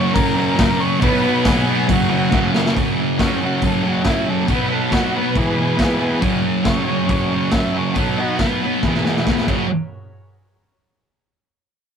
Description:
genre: garage rock duo or trio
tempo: 138 BPM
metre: 4/4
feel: straight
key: F# mixolydian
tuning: A4 = 438 Hz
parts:
  - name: overdriven combo organ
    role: melody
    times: 0.0-8.4 s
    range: C#4 to E5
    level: -24 LUFS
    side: equal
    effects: none
  - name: combo organ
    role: sustained chords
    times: 0.0-9.7 s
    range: C#4 to C#5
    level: -31 LUFS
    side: left 1 dB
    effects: none
  - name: thick fuzz guitar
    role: riff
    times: 0.0-9.7 s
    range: E2 to B3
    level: -18 LUFS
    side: right 1 dB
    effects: distortion
  - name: raw garage drum kit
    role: drums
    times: 0.2-9.6 s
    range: crash cymbal, hi-hat, kick drum, snare drum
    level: -21 LUFS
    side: equal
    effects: none
room: moderate booth ambience, RT60 0.2 s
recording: rough rehearsal-room recording, warm saturation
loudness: -15 LUFS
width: side -7 dB against mid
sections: 0.0-2.8 A section; 2.8-9.7 B section; 9.7-11.4 C section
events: drum fill 2.3-2.8, 8.8-9.7; transistor combo organ solo 2.8-9.7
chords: 0.0 F#; 1.0 B; 1.9 F#; 4.5 B; 5.4 E; 6.2 F#; 8.0 B; 8.8 E; 9.5 F#; 9.7 N.C.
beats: 0.16 0.59 | 1.02 1.46 1.89 2.32 | 2.75 3.19 3.62 4.05 | 4.49 4.92 5.36 5.79 | 6.23 6.66 7.09 7.53 | 7.96 8.40 8.83 9.27

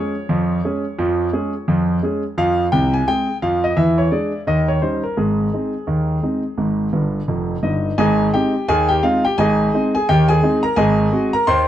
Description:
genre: ragtime piano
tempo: 86 BPM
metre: 2/4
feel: swing 60% on 16ths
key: Ab major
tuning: A4 = 442 Hz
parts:
  - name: clear concert grand piano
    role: solo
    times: 0.0-11.7 s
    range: F1 to C6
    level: -16 LUFS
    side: equal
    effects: none
room: little or no reverb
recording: dry, close 1970s-style studio recording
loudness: -16 LUFS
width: side -11 dB against mid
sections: 0.0-8.0 A section; 8.0-11.7 B section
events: grand piano fill 6.9-8.0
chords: 0.0 Db/F; 2.4 Fm; 3.8 E7; 4.5 Eb7; 5.2 Ab; 10.8 Ab7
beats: 0.29 | 0.98 1.68 | 2.38 3.07 | 3.77 4.47 | 5.17 5.87 | 6.57 7.28 | 7.98 8.68 | 9.37 10.07 | 10.77 11.46

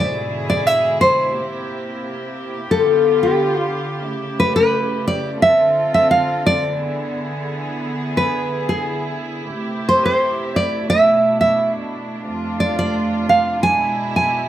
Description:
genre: acoustic folk-pop ballad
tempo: 88 BPM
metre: 4/4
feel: straight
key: unclear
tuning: A4 = 440 Hz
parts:
  - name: nylon-string guitar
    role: melody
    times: 0.0-14.5 s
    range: G4 to G#5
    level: -16 LUFS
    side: equal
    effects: none
  - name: dark studio string section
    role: sustained chords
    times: 0.0-14.5 s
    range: F2 to A4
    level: -24 LUFS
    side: right 1 dB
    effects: none
room: moderate large studio reverb, RT60 1.1 s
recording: none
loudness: -16 LUFS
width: side -12 dB against mid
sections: 0.0-14.5 A section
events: none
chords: 0.0 E7/G#; 1.3 C7; 2.7 G7; 4.0 A7; 5.4 Dm7; 6.8 E7; 9.5 Am7; 10.9 E7sus4; 12.2 Dm7/F; 13.6 E7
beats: 0.63 | 1.31 1.99 2.67 3.35 | 4.03 4.71 5.40 6.08 | 6.76 7.45 8.13 8.82 | 9.50 10.19 10.87 11.55 | 12.24 12.92 13.60 14.29

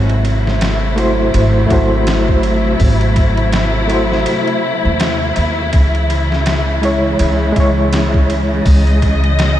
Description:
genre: trip hop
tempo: 82 BPM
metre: 4/4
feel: swing 58% on 16ths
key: C# harmonic minor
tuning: A4 = 440 Hz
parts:
  - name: warm studio string section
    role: sustained chords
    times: 0.0-9.6 s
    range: B#2 to D#5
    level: -18 LUFS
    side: left 1 dB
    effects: none
  - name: upright bass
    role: bass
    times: 0.0-9.6 s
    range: G#1 to D#2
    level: -16 LUFS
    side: equal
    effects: none
  - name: trip hop sampler-style drum kit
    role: drums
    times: 0.1-9.6 s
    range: hi-hat, kick drum, ride cymbal, snare drum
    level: -18 LUFS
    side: equal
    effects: overdrive, vintage 12-bit sampler grit, small room ambience
  - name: overdriven reed electric piano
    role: accompaniment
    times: 1.0-9.6 s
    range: G#3 to C#5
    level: -18 LUFS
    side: equal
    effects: tremolo, tape echo
room: moderate huge ambient reverb, RT60 7.5 s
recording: dreamy mix soaked in reverb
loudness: -12 LUFS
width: side -12 dB against mid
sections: 0.0-9.6 A section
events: none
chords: 0.0 G#7b9b13; 5.7 C#m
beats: 0.61 1.34 2.07 | 2.80 3.53 4.26 5.00 | 5.73 6.46 7.19 7.92 | 8.66 9.39

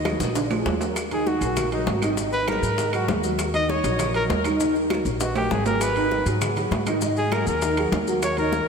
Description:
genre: Afro-Cuban jazz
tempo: 198 BPM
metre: 4/4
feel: straight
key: unclear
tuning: A4 = 440 Hz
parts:
  - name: upright bass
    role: bass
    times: 0.0-8.6 s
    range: Ab1 to Ab2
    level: -28 LUFS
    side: equal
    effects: none
  - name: dark baby grand piano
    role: accompaniment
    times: 0.1-8.6 s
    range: D3 to Eb5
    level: -25 LUFS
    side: right 1 dB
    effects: ensemble chorus
  - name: bongos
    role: percussion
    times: 0.1-8.7 s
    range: none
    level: -32 LUFS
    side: left 7 dB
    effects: none
  - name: claves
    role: percussion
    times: 0.1-8.4 s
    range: none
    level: -39 LUFS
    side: right 7 dB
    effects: none
  - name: congas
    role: percussion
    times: 0.1-8.7 s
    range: none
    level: -33 LUFS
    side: left 2 dB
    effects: none
  - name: maracas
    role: percussion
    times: 0.1-8.7 s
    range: none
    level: -36 LUFS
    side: left 7 dB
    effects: none
  - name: timbales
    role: percussion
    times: 0.1-8.7 s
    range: none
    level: -32 LUFS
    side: right 5 dB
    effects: none
  - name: warm trumpet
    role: melody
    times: 1.1-8.7 s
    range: Eb4 to Eb5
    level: -26 LUFS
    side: equal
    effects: analog delay
room: wet lush hall reverb, RT60 2.8 s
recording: dreamy mix soaked in reverb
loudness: -20 LUFS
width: side -6 dB against mid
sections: 1.0-8.7 A section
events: drum fill 0.2-1.0, 5.2-5.8; trumpet solo 1.0-8.7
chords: 0.4 Bb7; 1.0 Absus2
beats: 0.05 0.35 0.66 | 0.96 1.27 1.57 1.87 | 2.18 2.48 2.78 3.09 | 3.39 3.69 4.00 4.30 | 4.60 4.90 5.21 5.51 | 5.81 6.11 6.42 6.72 | 7.02 7.32 7.62 7.92 | 8.22 8.53

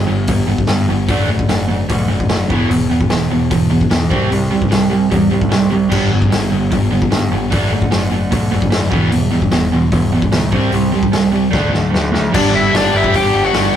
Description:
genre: punk rock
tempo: 150 BPM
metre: 4/4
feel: straight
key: G major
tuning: A4 = 439 Hz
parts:
  - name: overdriven electric guitar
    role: riff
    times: 0.0-13.7 s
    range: E2 to D4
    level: -16 LUFS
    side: right 4 dB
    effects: none
  - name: tight distorted guitar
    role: riff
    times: 0.0-13.8 s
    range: C3 to G4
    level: -22 LUFS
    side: left 6 dB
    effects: distortion
  - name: growling picked electric bass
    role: bass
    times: 0.0-13.8 s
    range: E1 to G2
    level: -20 LUFS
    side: equal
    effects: overdrive
  - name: raw garage drum kit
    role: drums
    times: 0.3-13.6 s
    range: crash cymbal, hi-hat, kick drum, snare drum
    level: -18 LUFS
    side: left 2 dB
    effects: none
  - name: biting lead guitar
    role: melody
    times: 12.3-13.8 s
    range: D4 to G5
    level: -15 LUFS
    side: left 5 dB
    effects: overdrive, ping-pong delay
room: moderate studio reverb, RT60 0.5 s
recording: rough rehearsal-room recording, tube saturation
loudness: -12 LUFS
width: side -10 dB against mid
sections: 0.0-12.3 A section; 12.3-13.8 B section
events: drum fill 11.5-12.3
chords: 0.0 G; 1.1 D/F#; 2.5 E5; 4.1 C5; 5.9 G; 7.5 D/F#; 8.9 Em; 10.5 C5; 11.5 D; 12.3 G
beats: 0.29 0.70 | 1.10 1.50 1.90 2.30 | 2.70 3.10 3.50 3.91 | 4.31 4.71 5.11 5.51 | 5.91 6.31 6.71 7.11 | 7.51 7.92 8.32 8.72 | 9.12 9.52 9.92 10.32 | 10.72 11.13 11.53 11.93 | 12.33 12.73 13.13 13.53

